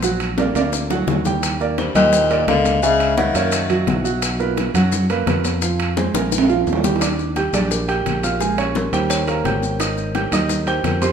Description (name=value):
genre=Afro-Cuban jazz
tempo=172 BPM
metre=4/4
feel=straight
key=Eb major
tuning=A4 = 440 Hz
part: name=warm concert grand piano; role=accompaniment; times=0.0-11.1 s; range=Bb2 to G6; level=-22 LUFS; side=right 5 dB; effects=none
part: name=fingered electric bass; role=bass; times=0.0-11.1 s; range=Ab1 to Gb2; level=-23 LUFS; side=left 1 dB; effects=none
part: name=bongos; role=percussion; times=0.0-11.1 s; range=none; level=-28 LUFS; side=left 8 dB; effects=none
part: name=congas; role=percussion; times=0.0-11.1 s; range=none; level=-26 LUFS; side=left 2 dB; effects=none
part: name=maracas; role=percussion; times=0.0-11.1 s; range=none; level=-30 LUFS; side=left 8 dB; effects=none
part: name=timbales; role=percussion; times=0.2-11.1 s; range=none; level=-26 LUFS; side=right 4 dB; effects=none
part: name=kalimba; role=melody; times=1.8-4.0, 7.4-11.1 s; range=G4 to Gb5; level=-22 LUFS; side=left 1 dB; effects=none
part: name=bright baritone saxophone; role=second line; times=1.8-4.0 s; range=G2 to Eb3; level=-22 LUFS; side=left 8 dB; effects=none
room=wet large studio reverb, RT60 1.3 s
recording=minimal, uncompressed stereo recording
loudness=-16 LUFS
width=side -7 dB against mid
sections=0.0-7.0 A section; 7.0-11.1 B section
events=drum fill 0.4-1.4, 6.1-7.0; kalimba solo 7.0-11.1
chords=0.0 Bbaug; 1.4 Ebmaj7; 2.8 Dbm11; 3.5 Gb6; 4.2 B5; 5.6 Fm; 6.3 Bb5; 7.0 Ebmaj9; 8.4 Bbm7; 9.1 Eb; 9.8 Abmaj7